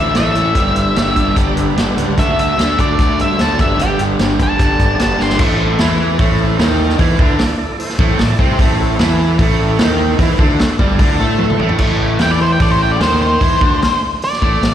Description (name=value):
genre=blues rock power trio and southern rock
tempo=149 BPM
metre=4/4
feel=straight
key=A minor from 5.4 s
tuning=A4 = 440 Hz
part: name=octave-fuzz lead guitar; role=melody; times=0.0-5.4, 12.2-14.7 s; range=G4 to C6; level=-18 LUFS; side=equal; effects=distortion, slapback echo, tape echo
part: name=tonewheel organ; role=sustained chords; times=0.0-11.8 s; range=D4 to C6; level=-24 LUFS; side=right 3 dB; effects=slow rotary speaker, overdrive
part: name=overdriven semi-hollow guitar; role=riff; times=0.0-14.7 s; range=G2 to A4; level=-17 LUFS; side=equal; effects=slapback echo
part: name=fuzz fingered electric bass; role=bass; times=0.0-14.7 s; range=G1 to A2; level=-18 LUFS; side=equal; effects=overdrive
part: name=vintage drum kit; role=drums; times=0.1-14.7 s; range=crash cymbal, hi-hat, kick drum, snare drum, toms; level=-16 LUFS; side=equal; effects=none
room=small room reverb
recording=live gig heard through the venue's PA, recital hall reverb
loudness=-12 LUFS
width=side -10 dB against mid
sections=0.0-5.4 A section; 5.4-11.8 B section; 11.8-14.7 C section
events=tonewheel organ fill 1.6-2.2, 7.8-8.6, 11.2-11.8; drum fill 5.2, 11.4-11.8; lead electric guitar solo 11.8-14.7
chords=0.0 Am; 0.6 G; 2.2 D; 3.6 G; 5.4 Am